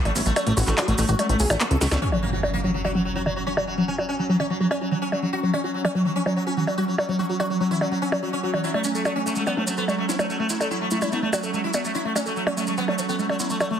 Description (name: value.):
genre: psychedelic trance.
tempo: 145 BPM.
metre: 4/4.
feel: straight.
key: unclear.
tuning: A4 = 440 Hz.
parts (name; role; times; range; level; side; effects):
pulsing gated texture; sustained chords; 0.1-13.8 s; F#3 to C#4; -30 LUFS; right 2 dB; chorus, built-in reverb.
woody wave-folded pluck; riff; 0.0-13.8 s; E3 to A4; -26 LUFS; equal; chorus, auto-pan, cassette tape.
sitar; melody; 0.1-13.8 s; F#3 to A4; -28 LUFS; equal; phaser, dub echo.
plucky analog bass; bass; 0.1-2.0 s; A1 to C#2; -22 LUFS; equal; none.
techno drum kit; drums; 0.1-13.7 s; handclaps, hi-hat, percussion blips, snare drum; -27 LUFS; equal; low-pass filter on hats, low-pass filter on perc, low-pass filter on snare, low-pass filter on room.
maracas; percussion; 0.2-2.0, 8.6-13.7 s; none; -32 LUFS; right 2 dB; none.
vowel-sweep wobble bass; second line; 0.6-1.0, 9.6-13.0 s; C#4 to F#4; -33 LUFS; left 3 dB; chorus, high-pass filter, tape echo.
impact; sound effects; 2.0-3.7 s; none; -29 LUFS; equal; none.
room: moderate digital room reverb, RT60 1.1 s.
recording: heavily compressed radio sound, multiband compression.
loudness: -21 LUFS.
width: side -8 dB against mid.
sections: 0.0-2.0 A section; 2.0-13.8 B section.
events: drop 0.0-2.0; drum fill 1.8; impact 2.0-3.7; filter sweep on synth arpeggio sound 2.0-13.8.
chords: 0.0 A5; 2.0 F#5; 8.6 A5.